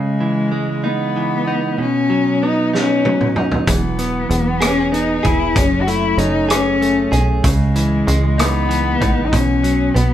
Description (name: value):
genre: six-eight pop ballad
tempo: 64 BPM (dotted quarters)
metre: 6/8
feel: straight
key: unclear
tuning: A4 = 440 Hz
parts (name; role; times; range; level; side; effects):
- dark cello; melody; 0.0-10.1 s; G#3 to F#4; -18 LUFS; left 4 dB; none
- direct-recorded clean electric guitar; accompaniment; 0.0-10.1 s; F#2 to G#4; -20 LUFS; right 4 dB; none
- loose indie drum kit; drums; 2.7-10.1 s; hi-hat, kick drum, rim click, snare drum, toms; -20 LUFS; equal; none
- plucky analog bass; bass; 3.7-10.1 s; E1 to C#2; -19 LUFS; equal; none
room: light reverb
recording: band playing live in one room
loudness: -14 LUFS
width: side -11 dB against mid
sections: 0.0-10.1 A section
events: drum fill 2.7-3.7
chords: 0.0 C#madd9; 1.8 B; 3.7 E; 5.6 F#madd9; 7.4 C#madd9; 9.3 Bsus4